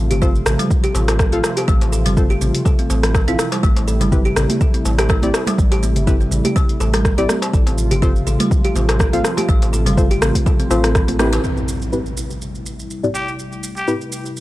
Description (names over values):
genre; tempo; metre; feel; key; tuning
afro house; 123 BPM; 4/4; swing 55% on 16ths; A minor; A4 = 437 Hz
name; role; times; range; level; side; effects
warm analog pad; sustained chords; 0.0-14.4 s; C3 to F4; -26 LUFS; right 1 dB; chorus, sidechain pumping
warm sub bass; bass; 0.0-11.4 s; G1 to A1; -19 LUFS; equal; sidechain pumping
kalimba; arpeggios; 0.1-11.4 s; E3 to A4; -23 LUFS; equal; sidechain pumping, tape echo
deep house drum kit; drums; 0.1-14.4 s; hi-hat, rim click, shaker; -23 LUFS; equal; overdrive
darbuka; percussion; 0.1-11.4 s; none; -26 LUFS; left 2 dB; none
deep mellow chord stab; stabs; 0.2-13.9 s; A2 to F5; -23 LUFS; left 2 dB; chorus, sidechain pumping, tape echo
electronic kick drum; drums; 0.2-11.1 s; none; -16 LUFS; equal; overdrive
congas; percussion; 4.4-11.3 s; none; -26 LUFS; right 4 dB; none
impact; sound effects; 11.4-13.4 s; none; -27 LUFS; equal; none
trumpet with straight mute; melody; 13.1-13.9 s; G4; -25 LUFS; left 1 dB; tape echo
room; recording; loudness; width
little or no reverb; dry, gritty hardware recording, transformer saturation; -14 LUFS; side -17 dB against mid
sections
0.0-11.4 A section; 11.4-14.4 B section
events
band accent 11.2; impact 11.4-13.4; filter sweep on synth stab 11.4-14.4; filter sweep on analog synth pad 11.4-14.4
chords
0.0 F; 3.6 Am7; 7.5 F; 11.4 Am7